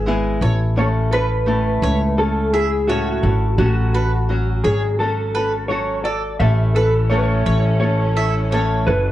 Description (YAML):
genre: pop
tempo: 85 BPM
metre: 4/4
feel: straight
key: A major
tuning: A4 = 441 Hz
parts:
  - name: mellow electric guitar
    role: melody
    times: 0.0-9.1 s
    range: F#4 to E5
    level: -22 LUFS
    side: equal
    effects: ensemble chorus
  - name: nylon-string guitar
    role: accompaniment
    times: 0.0-9.1 s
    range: A2 to A4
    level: -23 LUFS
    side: left 1 dB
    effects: none
  - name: upright bass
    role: bass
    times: 0.0-9.1 s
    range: F#1 to C#2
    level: -19 LUFS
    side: equal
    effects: none
  - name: mandolin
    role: arpeggios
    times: 0.4-9.0 s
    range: A4 to E5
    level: -27 LUFS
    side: right 4 dB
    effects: none
  - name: warm studio string section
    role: sustained chords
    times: 6.4-9.1 s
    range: E3 to C#4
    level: -31 LUFS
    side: right 1 dB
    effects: none
room: light reverb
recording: worn, warbling old tape, cassette tape, warbly pitch drift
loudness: -16 LUFS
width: side -14 dB against mid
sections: 0.0-9.1 A section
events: none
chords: 0.4 A; 3.6 F#m; 6.4 A